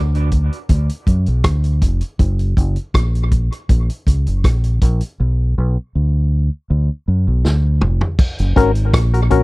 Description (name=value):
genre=dub reggae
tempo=80 BPM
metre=4/4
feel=straight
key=unclear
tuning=A4 = 440 Hz
part: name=deep dub fingered electric bass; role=bass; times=0.0-9.4 s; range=E#1 to F#2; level=-15 LUFS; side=equal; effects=none
part: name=vintage drum kit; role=drums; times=0.1-9.4 s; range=crash cymbal, hi-hat, kick drum, rim click, snare drum, toms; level=-16 LUFS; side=equal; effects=none
part: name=percussive organ stab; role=stabs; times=8.6-9.4 s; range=C#4 to A#4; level=-16 LUFS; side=left 5 dB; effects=chorus, dub echo
room=little or no reverb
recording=dry, close 1970s-style studio recording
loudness=-14 LUFS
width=side -22 dB against mid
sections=0.0-8.2 A section; 8.2-9.4 B section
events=break 0.0-5.2; drums muted 5.2-8.2; drum fill 7.4-8.2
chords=0.0 N.C.; 2.2 F#; 5.2 Bm; 8.2 F#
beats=0.70 1.45 | 2.20 2.95 3.70 4.45 | 5.19 5.94 6.69 7.44 | 8.19 8.94